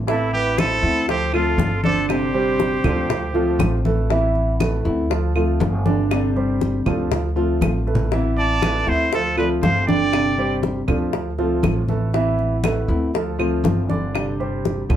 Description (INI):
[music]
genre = latin, Cuban son and guajira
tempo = 119 BPM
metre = 4/4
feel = straight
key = unclear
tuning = A4 = 439 Hz
[part]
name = nylon-string guitar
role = accompaniment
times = 0.0-15.0 s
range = C3 to G4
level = -25 LUFS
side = left 3 dB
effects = none
[part]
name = upright bass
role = bass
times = 0.0-15.0 s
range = G1 to D2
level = -23 LUFS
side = equal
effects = none
[part]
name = trumpet with straight mute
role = melody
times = 0.1-3.8, 8.4-10.6 s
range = E4 to D5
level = -23 LUFS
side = right 1 dB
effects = none
[part]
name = breathy bright jazz flute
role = second line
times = 0.1-3.8, 8.4-10.6 s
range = A4 to A5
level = -28 LUFS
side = right 4 dB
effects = none
[part]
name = warm grand piano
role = arpeggios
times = 0.1-15.0 s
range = D3 to B5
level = -24 LUFS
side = right 5 dB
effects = none
[part]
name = bongos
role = percussion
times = 0.1-15.0 s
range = none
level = -27 LUFS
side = left 6 dB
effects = none
[part]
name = congas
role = percussion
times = 0.1-15.0 s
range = none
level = -25 LUFS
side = left 2 dB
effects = none
[part]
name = claves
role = percussion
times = 0.6-15.0 s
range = none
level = -32 LUFS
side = right 2 dB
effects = none
[sound]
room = wet studio reverb, RT60 0.5 s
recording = heard from further back in the room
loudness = -18 LUFS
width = side -10 dB against mid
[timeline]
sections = 0.1-15.0 A section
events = drum fill 7.6-8.1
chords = 0.1 Amadd9; 1.1 Gsus4; 3.1 Dm7; 4.1 Amadd9; 5.1 Gsus4; 7.1 Dm7; 8.1 Amadd9; 9.1 Gsus4; 11.1 Dm7; 12.1 Amadd9; 13.1 Gsus4